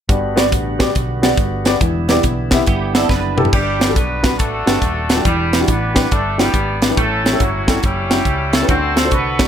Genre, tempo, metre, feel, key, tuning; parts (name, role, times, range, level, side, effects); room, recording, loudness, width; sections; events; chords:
uptempo gospel; 140 BPM; 4/4; swing 64% on 8ths; G major; A4 = 440 Hz
warm grand piano; accompaniment; 0.1-9.5 s; G2 to E5; -20 LUFS; equal; wide subtle chorus
bright tonewheel organ; sustained chords; 0.1-3.5 s; D3 to F#4; -24 LUFS; right 2 dB; slow rotary speaker, overdrive
hollow-body short-scale fingered electric bass; bass; 0.1-9.5 s; Eb1 to D2; -23 LUFS; equal
crisp fusion drum kit; drums; 0.1-9.5 s; crash cymbal, hi-hat, kick drum, snare drum, toms; -17 LUFS; equal
clean electric guitar; second line; 2.7-3.5 s; B3 to B4; -24 LUFS; right 6 dB; ensemble chorus
clear horn section; melody; 3.5-9.5 s; F#3 to C5; -19 LUFS; equal
light reverb, small room reverb; bright 1980s-style digital production; -14 LUFS; side -9 dB against mid
0.1-3.5 A section; 3.5-9.5 B section
drum fill 3.1-3.5
0.1 Gmaj7; 1.8 Em7; 3.5 Gmaj7; 5.3 Em7; 7.0 A7; 8.7 D7